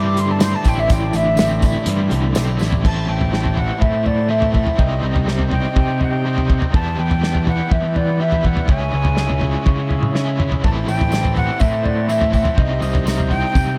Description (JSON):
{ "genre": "psychedelic rock", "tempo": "123 BPM", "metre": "4/4", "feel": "straight", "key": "unclear", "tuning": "A4 = 440 Hz", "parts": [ { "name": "silver concert flute", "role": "melody", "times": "0.0-13.8 s", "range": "D5 to D6", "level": "-26 LUFS", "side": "equal", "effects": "dub echo" }, { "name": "hand-pumped harmonium", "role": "sustained chords", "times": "0.0-13.8 s", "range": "Eb4 to C6", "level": "-33 LUFS", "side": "equal", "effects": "none" }, { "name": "overdriven semi-hollow guitar", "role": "riff", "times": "0.0-13.8 s", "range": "A2 to E4", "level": "-27 LUFS", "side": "equal", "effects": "tremolo, dub echo" }, { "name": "fuzz picked electric bass", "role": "bass", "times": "0.0-13.8 s", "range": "A1 to E3", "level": "-22 LUFS", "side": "equal", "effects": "overdrive" }, { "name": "tanpura", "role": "drone", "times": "0.0-8.8 s", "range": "A2 to A3", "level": "-37 LUFS", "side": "equal", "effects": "none" }, { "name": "damped 70s drum kit", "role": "drums", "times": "0.2-13.7 s", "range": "crash cymbal, hi-hat, kick drum, snare drum, toms", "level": "-21 LUFS", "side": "equal", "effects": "none" }, { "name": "tambourine", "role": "percussion", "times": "0.2-2.7, 10.9-13.7 s", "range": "none", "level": "-42 LUFS", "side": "equal", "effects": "none" } ], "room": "light reverb, small room reverb", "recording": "echo-heavy mix", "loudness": "-18 LUFS", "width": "mono", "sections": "0.0-2.8 A section; 2.8-13.8 B section", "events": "flute solo 0.0-2.8; drum fill 2.6, 10.2-10.6", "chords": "0.0 Cadd9/A; 2.8 Am; 4.8 Cm; 6.7 Em; 8.7 C#m; 10.6 Am; 12.6 Cm", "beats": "0.42 | 0.90 1.39 1.87 2.36 | 2.84 3.33 3.82 4.30 | 4.79 5.28 5.77 6.26 | 6.74 7.23 7.72 8.21 | 8.69 9.18 9.67 10.15 | 10.64 11.13 11.61 12.10 | 12.59 13.07 13.56" }